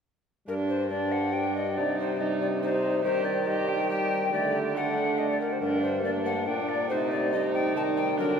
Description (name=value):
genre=classical, renaissance-style consort dance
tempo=140 BPM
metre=3/4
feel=straight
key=G harmonic minor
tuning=A4 = 436 Hz
part: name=mellow hollow alto recorder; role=melody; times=0.5-8.4 s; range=Bb4 to A5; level=-29 LUFS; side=left 2 dB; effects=none
part: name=warm viola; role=second line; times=0.5-8.4 s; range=D4 to G4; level=-30 LUFS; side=right 3 dB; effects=none
part: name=warm trombone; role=accompaniment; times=0.5-8.4 s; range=F#3 to Bb3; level=-33 LUFS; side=left 1 dB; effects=none
part: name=clear bassoon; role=bass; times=0.5-8.4 s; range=G2 to Eb3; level=-30 LUFS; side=right 1 dB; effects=none
room=wet cathedral reverb, RT60 5.7 s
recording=heard from further back in the room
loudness=-25 LUFS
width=side -6 dB against mid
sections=0.5-8.4 A section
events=none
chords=0.5 G5; 1.8 Cm; 3.0 Eb; 4.3 Dsus4; 5.6 Gm; 6.9 Cm